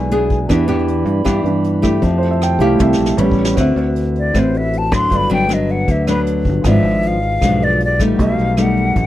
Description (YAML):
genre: bossa nova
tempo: 156 BPM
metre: 4/4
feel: straight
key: unclear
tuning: A4 = 440 Hz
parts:
  - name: nylon-string guitar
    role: accompaniment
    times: 0.0-9.1 s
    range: F#2 to B4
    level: -17 LUFS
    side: left 2 dB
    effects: none
  - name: warm baby grand piano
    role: accompaniment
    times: 0.0-9.1 s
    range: E3 to G5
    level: -22 LUFS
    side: right 5 dB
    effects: none
  - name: dark brass ensemble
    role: sustained chords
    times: 0.0-9.1 s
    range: D3 to B5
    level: -28 LUFS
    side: left 2 dB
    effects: none
  - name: fingered electric bass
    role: bass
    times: 0.0-9.1 s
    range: G1 to G2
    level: -19 LUFS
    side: equal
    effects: none
  - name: vintage brush drum kit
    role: drums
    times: 0.1-9.0 s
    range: hi-hat, kick drum, rim click, snare drum, toms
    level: -20 LUFS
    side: equal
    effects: none
  - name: hollow concert flute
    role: melody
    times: 4.2-9.1 s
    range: B4 to C6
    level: -19 LUFS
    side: left 1 dB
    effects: none
room: studio ambience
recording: dry, close 1970s-style studio recording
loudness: -13 LUFS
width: side -13 dB against mid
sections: 0.0-3.6 A section; 3.6-9.1 A section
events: grand piano solo 0.0-3.6; drum fill 2.8-3.6; flute solo 3.6-9.1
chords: 0.0 E7; 0.5 Em7; 2.0 Fmaj9; 3.2 A9; 3.6 D13; 5.1 Gmaj7; 6.7 E7b9/G#; 8.2 B7b13